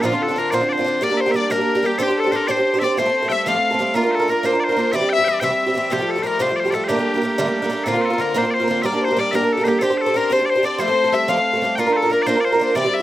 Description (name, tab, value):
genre	celtic folk, Celtic jig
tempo	123 BPM (dotted quarters)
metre	6/8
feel	straight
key	unclear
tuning	A4 = 440 Hz
part	loud bright bagpipes	melody	0.0-13.0 s	F4 to G5	-22 LUFS	left 1 dB	none
part	picked twelve-string acoustic guitar	accompaniment	0.0-13.0 s	F2 to C5	-19 LUFS	right 2 dB	slapback echo
part	warm fiddle	second line	0.1-13.0 s	F4 to F5	-22 LUFS	left 5 dB	none
room	little or no reverb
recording	recorded outdoors, with no room sound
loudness	-16 LUFS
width	side -14 dB against mid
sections	0.0-7.9 A section; 7.9-13.0 A section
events	none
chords	0.0 Bbadd9; 1.0 Gm; 2.0 Csus2; 3.0 Fadd9; 4.0 Bb; 4.9 C; 5.9 Fadd9; 6.9 Gmadd9; 7.9 Bbadd9; 8.8 Gm; 9.8 Csus2; 10.8 Fadd9; 11.8 Bb